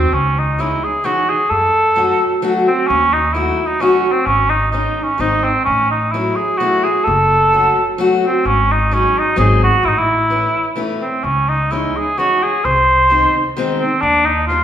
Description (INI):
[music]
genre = musette waltz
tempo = 130 BPM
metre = 3/4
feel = swing 54% on 8ths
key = C# harmonic minor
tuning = A4 = 440 Hz
[part]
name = mellow cor anglais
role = melody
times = 0.0-14.6 s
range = B#3 to B#4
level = -14 LUFS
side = right 1 dB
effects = none
[part]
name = upright bass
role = bass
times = 0.0-14.6 s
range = F#1 to F#2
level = -20 LUFS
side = equal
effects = none
[part]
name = picked acoustic archtop guitar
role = accompaniment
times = 0.6-14.6 s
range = D#3 to F#4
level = -19 LUFS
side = left 2 dB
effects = none
[sound]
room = wet recital hall reverb, RT60 1.4 s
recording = recorded in a church or concert hall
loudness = -13 LUFS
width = side -10 dB against mid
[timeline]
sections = 0.1-14.6 A section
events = none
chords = 0.1 C#madd9; 1.5 F#m; 2.9 D#dim; 4.3 G#sus4; 5.2 G#; 5.7 A6; 7.1 F#m; 8.5 G#7sus4; 9.4 G#7; 9.8 A; 11.2 C#madd9; 12.6 G#/B#; 14.0 D#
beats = | 0.11 0.58 1.04 | 1.50 1.96 2.42 | 2.88 3.34 3.80 | 4.26 4.72 5.19 | 5.66 6.13 6.60 | 7.07 7.53 7.99 | 8.46 8.92 9.37 | 9.83 10.30 10.77 | 11.24 11.72 12.18 | 12.64 13.10 13.56 | 14.02 14.49